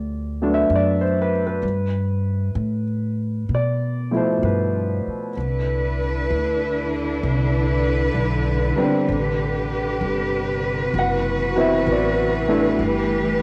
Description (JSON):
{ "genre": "jazz ballad", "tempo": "65 BPM", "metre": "4/4", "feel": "swing 68% on 8ths", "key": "G major", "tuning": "A4 = 436 Hz", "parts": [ { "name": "warm concert grand piano", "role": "accompaniment", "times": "0.0-13.4 s", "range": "B2 to F#5", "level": "-25 LUFS", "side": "equal", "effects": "cassette tape" }, { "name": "upright bass", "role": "bass", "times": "0.0-13.4 s", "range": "F#1 to B2", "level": "-26 LUFS", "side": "equal", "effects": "none" }, { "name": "rich studio cello section", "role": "sustained chords", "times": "5.4-13.4 s", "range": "C3 to B4", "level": "-24 LUFS", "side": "equal", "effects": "cassette tape" } ], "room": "moderate spring reverb, RT60 1.2 s, studio ambience", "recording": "home recording on cassette", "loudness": "-21 LUFS", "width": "mono", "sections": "0.0-13.4 A section", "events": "none", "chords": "0.0 Bm7; 1.6 G13; 5.4 Cmaj9; 9.1 Am11; 10.9 D13; 12.8 G69", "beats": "0.71 | 1.63 2.55 3.48 4.42 | 5.36 6.29 7.21 8.14 | 9.07 10.00 10.93 11.85 | 12.78" }